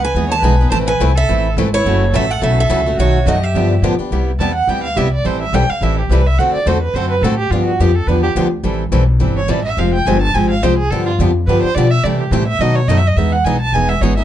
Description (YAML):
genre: acoustic string swing (jazz manouche)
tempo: 212 BPM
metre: 4/4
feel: swing 56% on 8ths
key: E major, C major from 4.1 s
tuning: A4 = 439 Hz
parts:
  - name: picked steel-string acoustic guitar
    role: melody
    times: 0.0-3.8 s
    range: C#5 to A5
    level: -18 LUFS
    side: right 3 dB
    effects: none
  - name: warm violin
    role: second line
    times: 0.0-14.2 s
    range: E4 to A5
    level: -20 LUFS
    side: right 3 dB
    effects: none
  - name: upright bass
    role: bass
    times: 0.0-14.2 s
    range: E1 to C3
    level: -16 LUFS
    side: left 1 dB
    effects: none
  - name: picked steel-string acoustic guitar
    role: accompaniment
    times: 0.2-14.2 s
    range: B2 to B4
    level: -20 LUFS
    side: left 5 dB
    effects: none
  - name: picked steel-string acoustic guitar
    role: accompaniment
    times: 0.2-14.1 s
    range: B2 to B4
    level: -21 LUFS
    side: right 7 dB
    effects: none
room: light reverb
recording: dark, warm production, nothing above 10.8 kHz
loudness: -13 LUFS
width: side -11 dB against mid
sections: 0.0-4.1 A section; 4.1-13.2 B section; 13.2-14.2 B section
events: violin solo 4.1-14.2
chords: 0.0 Emaj7; 0.7 Amadd9; 1.9 F#m7; 3.0 B7; 3.6 G13; 4.1 Cmaj9; 5.3 Am9; 6.4 D7; 7.5 G7; 8.6 Am9; 9.8 Fmadd9; 10.9 G7; 12.0 C6; 12.6 B7; 13.2 Emaj7